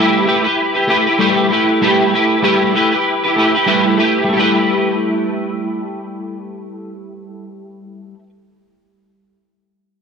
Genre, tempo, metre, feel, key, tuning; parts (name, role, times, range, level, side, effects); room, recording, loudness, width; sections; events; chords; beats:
indie pop; 97 BPM; 4/4; swing 60% on 16ths; G major; A4 = 440 Hz
clean electric guitar; solo; 0.0-8.3 s; G3 to B4; -14 LUFS; equal; ensemble chorus, warbly pitch drift
light reverb, digital ambience; -12 LUFS; side -6 dB against mid
0.0-4.3 A section; 4.3-6.8 B section
0.0 G69
0.57 1.19 | 1.81 2.43 3.05 3.67 | 4.29 4.91 5.53 6.15